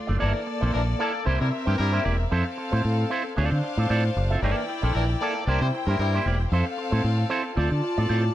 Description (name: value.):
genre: disco.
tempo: 114 BPM.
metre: 4/4.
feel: straight.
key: G dorian.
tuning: A4 = 440 Hz.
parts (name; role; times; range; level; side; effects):
rich chamber string section; second line; 0.0-8.3 s; A3 to A5; -30 LUFS; left 2 dB; none.
electric guitar with an envelope filter; accompaniment; 0.1-8.3 s; A3 to E5; -30 LUFS; right 4 dB; none.
modern bright fingered electric bass; bass; 0.1-8.3 s; E1 to D3; -23 LUFS; equal; none.
bright horn section; stabs; 0.2-6.2 s; E3 to D5; -30 LUFS; left 2 dB; none.
room: small room reverb.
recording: dark, warm production.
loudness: -22 LUFS.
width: side -13 dB against mid.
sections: 0.2-8.3 A section.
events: none.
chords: 0.2 Gm69 (rootless); 1.3 C7; 2.3 Fmaj7; 3.4 Dm7; 4.4 Gm69; 5.5 C7; 6.5 Fmaj7; 7.6 Dm7.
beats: | 0.21 0.74 1.26 1.79 | 2.31 2.84 3.37 3.89 | 4.42 4.94 5.47 6.00 | 6.52 7.05 7.57 8.10.